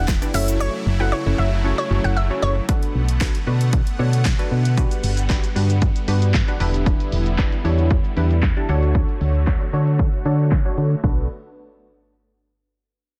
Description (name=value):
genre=dance-pop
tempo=115 BPM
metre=4/4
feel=straight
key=B minor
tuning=A4 = 442 Hz
part: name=analog pluck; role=melody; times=0.0-2.5 s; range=C#5 to F#5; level=-28 LUFS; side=equal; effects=chorus, sidechain pumping, digital delay
part: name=funky polysynth comp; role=accompaniment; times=0.0-11.3 s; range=C#4 to D5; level=-30 LUFS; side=equal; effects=chorus
part: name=supersaw chords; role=sustained chords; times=0.0-11.3 s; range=C#3 to F#5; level=-32 LUFS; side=equal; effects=sidechain pumping
part: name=solid FM bass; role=bass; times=0.0-11.3 s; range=E1 to D3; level=-21 LUFS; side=equal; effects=sidechain pumping
part: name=punchy analog drum machine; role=drums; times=0.1-11.2 s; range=crash cymbal, handclaps, hi-hat, kick drum, shaker, snare drum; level=-23 LUFS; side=equal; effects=none
room=little or no reverb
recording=dense, heavily limited modern master, low-pass filter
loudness=-20 LUFS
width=mono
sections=0.0-2.7 A section; 2.7-11.0 B section; 11.0-13.1 C section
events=drop 0.0-2.7; silent gap 0.6-2.7; filter sweep 2.7-11.0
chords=0.3 F#m7; 2.7 Bm7; 4.8 Gmaj7; 6.6 Em7; 8.7 Dmaj7; 11.0 Bm7